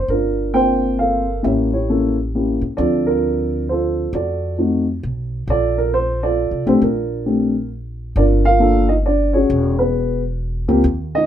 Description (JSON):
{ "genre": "jazz piano trio", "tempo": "134 BPM", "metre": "3/4", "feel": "swing 65% on 8ths", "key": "Bb major", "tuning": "A4 = 439 Hz", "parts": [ { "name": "dark upright piano", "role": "melody", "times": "0.0-11.3 s", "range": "F3 to G5", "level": "-16 LUFS", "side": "equal", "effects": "none" }, { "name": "upright bass", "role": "bass", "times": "0.0-11.3 s", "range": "E1 to A2", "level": "-22 LUFS", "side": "equal", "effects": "none" } ], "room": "moderate small room reverb, RT60 0.5 s", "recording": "band playing live in one room", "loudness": "-16 LUFS", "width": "side -10 dB against mid", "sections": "0.0-8.2 A section; 8.2-11.3 B section", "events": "none", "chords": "0.1 Gm11; 1.4 A7b9; 2.8 Dm7; 4.1 F(b9); 5.5 Bbmaj9; 8.2 Gm7; 9.5 E", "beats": "| 0.10 0.55 0.99 | 1.44 1.89 2.34 | 2.79 3.23 3.68 | 4.13 4.58 5.03 | 5.47 5.92 6.37 | 6.82 7.26 7.71 | 8.16 8.60 9.05 | 9.50 9.94 10.39 | 10.84" }